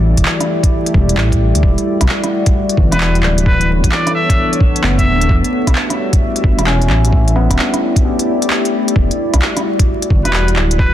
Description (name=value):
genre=future garage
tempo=131 BPM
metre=4/4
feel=swing 65% on 16ths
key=E dorian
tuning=A4 = 443 Hz
part: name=overdriven tine electric piano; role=accompaniment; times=0.0-9.2 s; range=E3 to D4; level=-20 LUFS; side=left 2 dB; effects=phaser, sidechain pumping, digital delay
part: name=warbly tape-like pad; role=sustained chords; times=0.0-10.9 s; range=G3 to E5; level=-19 LUFS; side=equal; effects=chorus, built-in reverb, sidechain pumping
part: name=dark detuned saw bass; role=bass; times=0.0-10.9 s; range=D1 to D2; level=-14 LUFS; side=equal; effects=tube saturation, sidechain pumping
part: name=electronic kick drum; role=drums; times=0.2-10.9 s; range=none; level=-14 LUFS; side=equal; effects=none
part: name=organic electronic drum kit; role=drums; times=0.2-10.8 s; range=handclaps, hi-hat, rim click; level=-19 LUFS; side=right 1 dB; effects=none
part: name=trumpet with straight mute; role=melody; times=2.9-5.4, 10.2-10.9 s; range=B4 to E5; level=-20 LUFS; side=equal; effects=dub echo
room=light reverb, digital ambience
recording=dense, heavily limited modern master, vinyl crackle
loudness=-11 LUFS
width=side -12 dB against mid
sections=0.0-10.9 A section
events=break 8.0-9.0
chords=0.0 A7sus4; 1.6 Em9; 3.5 Bm9/D; 5.3 Em9; 7.1 A7sus4; 9.0 Em9